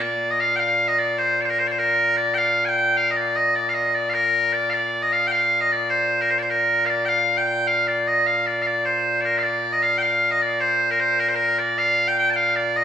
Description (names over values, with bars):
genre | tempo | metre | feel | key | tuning
scottish traditional, Scottish pipe music | 102 BPM (dotted quarters) | 6/8 | straight | Bb major | A4 = 440 Hz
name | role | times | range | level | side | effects
loud bright bagpipes | solo | 0.0-12.8 s | Bb2 to A5 | -18 LUFS | equal | none
room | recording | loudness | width
wet recital hall reverb, RT60 1.4 s | recorded in a church or concert hall | -18 LUFS | side -9 dB against mid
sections
0.0-9.4 A section; 9.4-12.8 A section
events
none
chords
none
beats
| 0.01 0.60 | 1.19 1.78 | 2.37 2.95 | 3.54 4.13 | 4.72 5.31 | 5.89 6.48 | 7.07 7.66 | 8.25 8.84 | 9.43 10.01 | 10.60 11.19 | 11.78 12.37